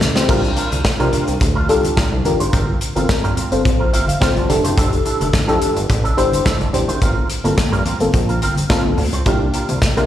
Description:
early-eighties boogie funk; 107 BPM; 4/4; straight; A4 = 439 Hz
chorused synth bass; bass; 0.0-10.1 s; F1 to C3; -20 LUFS; equal
modern studio drum kit; drums; 0.0-10.1 s; crash cymbal, hi-hat, kick drum, snare drum; -19 LUFS; equal
congas; percussion; 0.0-10.0 s; -26 LUFS; equal
FM electric piano with soft pad layer; accompaniment; 0.2-10.1 s; Bb3 to A5; -19 LUFS; left 2 dB; chorus, phaser, slapback echo
electric guitar with an envelope filter; riff; 0.2-10.1 s; C4 to C5; -25 LUFS; right 3 dB; ensemble chorus, slapback echo
light reverb; live gig heard through the venue's PA, recital hall reverb; -14 LUFS; side -11 dB against mid
0.3-10.1 A section
drum fill 0.0; FM electric piano fill 3.7-4.8
0.3 C9sus4; 2.5 Gm11; 4.5 Fmaj13; 7.0 Gm11; 9.3 C9sus4

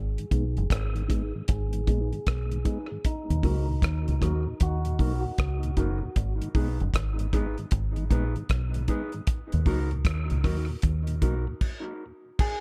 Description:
dub reggae; 77 BPM; 4/4; swing 63% on 16ths; G# minor; A4 = 440 Hz
electric guitar at the edge of break-up; melody; 0.0-5.7, 12.4-12.6 s; D#4 to G#4; -40 LUFS; equal; low-pass filter, tape echo
deep dub fingered electric bass; bass; 0.0-11.5 s; F#1 to D#2; -30 LUFS; equal
mellow tonewheel organ; accompaniment; 0.2-11.5 s; D#2 to D#4; -39 LUFS; equal; slow rotary speaker, low-pass filter, tape echo
damped 70s drum kit; drums; 0.2-12.6 s; crash cymbal, hi-hat, kick drum, rim click; -30 LUFS; equal
mellow electric guitar; accompaniment; 0.3-11.4 s; D#4 to B4; -38 LUFS; equal; low-pass filter, tape echo
small room ambience; echo-heavy mix; -27 LUFS; mono
0.0-12.4 A section
filter sweep 0.0-12.4; stop 11.6-12.4
0.0 G#m; 3.0 D#m; 6.2 G#m; 9.3 D#m

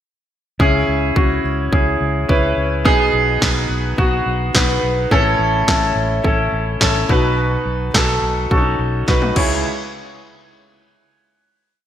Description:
piano-driven pop; 106 BPM; 4/4; straight; C# minor; A4 = 440 Hz
clear concert grand piano; accompaniment; 0.6-9.7 s; C#2 to C#5; -17 LUFS; equal; lush chorus
fingered electric bass; bass; 0.6-9.6 s; A1 to C#2; -22 LUFS; equal
house drum kit; drums; 0.6-9.5 s; crash cymbal, kick drum, snare drum, toms; -18 LUFS; equal; gated reverb
moderate lush hall reverb, RT60 2.1 s; bright 1980s-style digital production; -14 LUFS; side -10 dB against mid
0.6-9.6 verse; 9.6-11.9 final hit
drum fill 9.1-9.6
0.6 C#m; 2.9 B6; 5.1 A; 7.1 B; 9.4 C#m; 9.6 N.C.

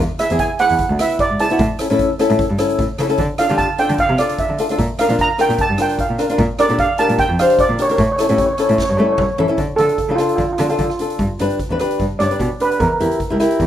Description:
calypso; 150 BPM; 4/4; swing 54% on 16ths; D harmonic minor from 9.6 s; A4 = 438 Hz
rich cello; bass; 0.0-13.7 s; C#2 to A3; -20 LUFS; equal
steel pan; melody; 0.2-13.4 s; F4 to Bb5; -18 LUFS; right 3 dB; plate reverb
flamenco guitar; accompaniment; 0.2-13.7 s; B3 to C#5; -18 LUFS; left 2 dB
street-band drum kit; drums; 0.2-13.7 s; hi-hat, kick drum, rim click, snare drum, toms; -25 LUFS; equal
moderate studio reverb, RT60 0.6 s; rough home demo mix, lossy compression artefacts; -14 LUFS; side -11 dB against mid
0.0-9.6 A section; 9.6-13.7 B section
drum fill 8.8-9.6; steel pan solo 9.6-13.7
0.0 E; 1.6 A; 3.2 Dm; 4.8 Bb; 6.4 Gm7/Bb; 8.0 A; 9.6 Dm; 11.2 G; 12.8 Edim

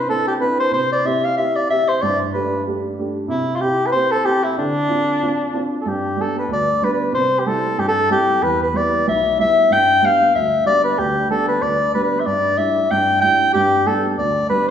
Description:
celtic folk; 187 BPM; 4/4; swing 57% on 8ths; A4 = 438 Hz
dark soprano saxophone; melody; 0.0-14.7 s; D4 to G5; -16 LUFS; left 1 dB
dark upright piano; accompaniment; 0.0-14.7 s; B1 to G4; -22 LUFS; right 2 dB
wet recital hall reverb, RT60 1.6 s; recorded in a church or concert hall, nothing above 10.9 kHz; -15 LUFS; side -8 dB against mid
0.0-5.9 A section; 5.9-14.7 B section
0.0 Cadd9; 0.7 C; 2.0 Gsus2; 3.3 C; 4.6 Dm7; 5.9 G; 7.1 C; 8.4 Em; 9.7 G; 12.3 Em7/G; 13.5 G

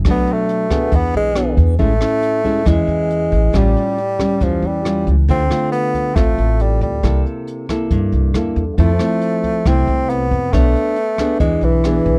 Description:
bossa nova; 137 BPM; 4/4; straight; A4 = 440 Hz
nylon-string guitar; accompaniment; 0.0-12.2 s; G2 to C#5; -22 LUFS; equal
upright bass; bass; 0.0-12.2 s; A1 to G2; -19 LUFS; equal
jazz brush drum kit; drums; 0.0-12.2 s; hi-hat, kick drum, rim click; -24 LUFS; equal
warm bassoon; melody; 0.1-12.2 s; E3 to C4; -22 LUFS; equal
light reverb; dry, close 1970s-style studio recording; -16 LUFS; mono
0.0-1.8 A section; 1.8-12.2 B section
bassoon solo 0.0-1.8
0.1 Bm7; 0.9 E7; 1.8 Amaj7; 3.5 A7b13; 5.3 Dm7; 7.0 C13; 8.8 Fmaj7; 10.5 Bm9; 11.4 E7

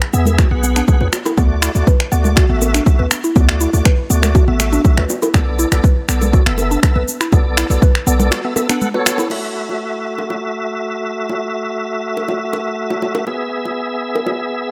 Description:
afro house; 121 BPM; 4/4; straight; A4 = 440 Hz
afro-pop drum kit; drums; 0.0-9.4 s; crash cymbal, finger snaps, shaker; -22 LUFS; equal
mallet-like synth pluck; arpeggios; 0.1-9.3 s; B3 to B4; -24 LUFS; equal; chorus, phaser, sidechain pumping, tape echo
tonewheel organ; stabs; 0.1-14.7 s; A3 to F#5; -24 LUFS; equal; chorus vibrato, fast rotary speaker, sidechain pumping, tape echo
warm 808-style bass; bass; 0.1-8.3 s; F#1 to E2; -19 LUFS; equal; sidechain pumping
bongos; percussion; 0.3-14.4 s; -26 LUFS; equal
congas; percussion; 0.3-9.2 s; -26 LUFS; equal
electronic kick drum; drums; 0.4-7.9 s; -14 LUFS; equal; overdrive
little or no reverb; -16 LUFS; mono
0.0-9.3 A section; 9.3-14.7 B section
break 8.3-9.3
0.0 E; 1.4 D; 5.3 Bm7; 9.3 F#m7; 13.3 E

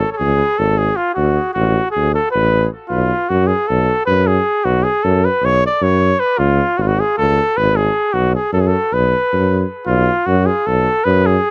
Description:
balkan folk; 310 BPM (eighths); 9/8; straight; B dorian sharp4; A4 = 443 Hz
clear cornet; melody; 0.0-11.5 s; E#4 to D5; -18 LUFS; equal; tape echo
warm tuba; bass; 0.2-11.4 s; G#1 to F#2; -18 LUFS; equal
little or no reverb; dry, close 1970s-style studio recording; -16 LUFS; mono
0.0-9.9 A section; 9.9-11.5 A section
0.0 C#5; 1.2 D; 2.9 B5; 6.4 C#; 8.1 B5

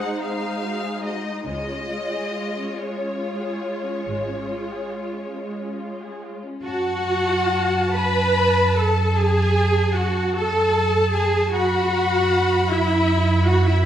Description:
classical, slow romantic movement for string orchestra; 45-52 BPM (dotted quarters); 12/8; rubato; F# minor; A4 = 438 Hz
warm studio violin section; melody; 0.0-13.8 s; C#5 to B5; -30 LUFS; left 2 dB
warm studio violin section; second line; 0.0-13.9 s; G#3 to B5; -27 LUFS; left 3 dB
warm studio viola section; accompaniment; 0.0-13.8 s; G#3 to B4; -24 LUFS; right 1 dB
rich studio double bass section; bass; 1.5-13.9 s; G#1 to F#2; -22 LUFS; right 2 dB
warm studio cello section; bass; 1.5-13.9 s; G#2 to B4; -25 LUFS; right 1 dB
wet scoring stage reverb, RT60 1.4 s; -19 LUFS; side -10 dB against mid
0.0-6.6 A section; 6.6-13.9 A section
0.0 G#7; 1.5 C#; 6.6 F#m; 11.5 Bsus4/F#

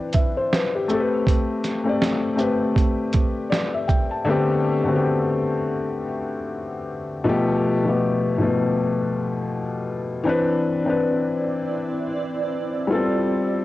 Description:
lo-fi hip hop; 80 BPM; 4/4; swing 61% on 16ths; A minor; A4 = 442 Hz
felt-muted upright piano; accompaniment; 0.0-13.6 s; B2 to A5; -21 LUFS; left 2 dB; cassette tape, low-pass filter
lo-fi sampler-style drum kit; drums; 0.1-4.1 s; hi-hat, kick drum, shaker, snare drum; -21 LUFS; right 2 dB
granular cloud pad; sustained chords; 10.9-13.6 s; A3 to D5; -29 LUFS; right 4 dB; built-in reverb, low-pass filter, cassette tape
light reverb; home recording on cassette; -20 LUFS; side -16 dB against mid
0.0-4.3 A section; 4.3-13.6 B section
0.0 Cmaj9; 0.9 Am9; 4.3 Am11; 7.3 G9/B; 10.3 Cmaj9; 12.9 G9sus4

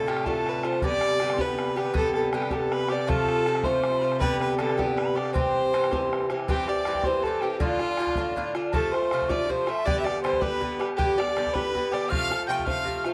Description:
celtic folk, Celtic jig; 106 BPM (dotted quarters); 6/8; straight; C major; A4 = 439 Hz
rich fiddle; melody; 0.0-13.1 s; F4 to G5; -29 LUFS; equal
mellow tin whistle; second line; 0.0-13.0 s; F5 to G6; -36 LUFS; equal
Irish bouzouki; accompaniment; 0.0-13.1 s; G2 to G4; -30 LUFS; equal
rich cello; drone; 0.0-6.5 s; C3; -37 LUFS; equal
bodhran; percussion; 0.1-13.1 s; -34 LUFS; equal
little or no reverb; dry, close 1970s-style studio recording; -26 LUFS; mono
0.0-6.5 A section; 6.5-13.1 B section
0.0 Dm; 0.8 G; 3.1 F; 4.2 G; 5.3 C; 7.6 Dm; 8.7 F; 9.8 G; 12.1 F

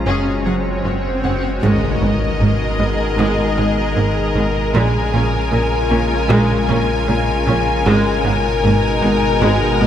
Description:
cinematic, hybrid orchestral and electronic film score; 77 BPM; 4/4; straight; G# dorian; A4 = 439 Hz
granular cloud pad; sustained chords; 0.0-9.9 s; B2 to C#5; -24 LUFS; left 1 dB; built-in reverb
mellow French horn section; sustained chords; 0.0-9.9 s; B2 to A#4; -25 LUFS; left 6 dB
warm trombone section; sustained chords; 0.0-9.9 s; B2 to G#3; -26 LUFS; right 3 dB
sub bass with octave; bass; 0.0-9.9 s; F#1 to A#1; -24 LUFS; equal
swell and impact; sound effects; 0.0-4.7 s; -25 LUFS; equal
rich symphonic violin section; melody; 0.1-9.9 s; G#4 to G#5; -24 LUFS; left 3 dB
rich symphonic violin section; second line; 0.1-9.9 s; C#4 to A#4; -27 LUFS; left 4 dB
warm symphonic viola section; accompaniment; 0.1-9.9 s; G#3 to C#4; -23 LUFS; right 1 dB
tight sequencer bass; riff; 0.1-9.9 s; F#2 to A#3; -24 LUFS; right 1 dB
rich symphonic cello section; bass; 0.1-9.9 s; F#2 to A#2; -23 LUFS; right 2 dB
rich symphonic double bass section; bass; 0.1-9.9 s; F#1 to A#1; -24 LUFS; right 2 dB
wet concert hall reverb, RT60 2.2 s; -14 LUFS; side -10 dB against mid
0.0-1.6 A section; 1.6-9.9 A section
swell 0.0-1.6; impact 1.6-4.7
0.1 F#sus2; 1.6 G#madd9; 4.7 A#m7; 7.9 G#madd9

